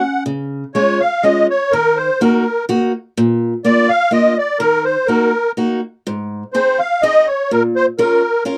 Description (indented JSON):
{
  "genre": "alpine folk, alpine dance band",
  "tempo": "124 BPM",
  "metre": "3/4",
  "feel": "straight",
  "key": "Db major",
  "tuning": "A4 = 440 Hz",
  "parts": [
    { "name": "musette accordion", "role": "melody", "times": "0.0-8.4 s", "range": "Bb4 to F#5", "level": "-16 LUFS", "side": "equal", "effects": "none" },
    { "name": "picked old ladder-braced acoustic guitar", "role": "accompaniment", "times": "0.3-8.6 s", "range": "Ab2 to Bb4", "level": "-19 LUFS", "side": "equal", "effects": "none" }
  ],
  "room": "light reverb",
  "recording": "dry, close 1970s-style studio recording",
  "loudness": "-16 LUFS",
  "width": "mono",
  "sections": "0.3-8.6 A section",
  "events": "none",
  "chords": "0.3 Db; 1.7 Ebm; 3.2 Bb; 4.6 Ebm; 6.0 Ab; 7.5 Bbm",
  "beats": "| 0.27 0.76 1.24 | 1.72 2.20 2.68 | 3.16 3.64 4.11 | 4.59 5.07 5.55 | 6.04 6.53 7.02 | 7.50 7.98 8.46"
}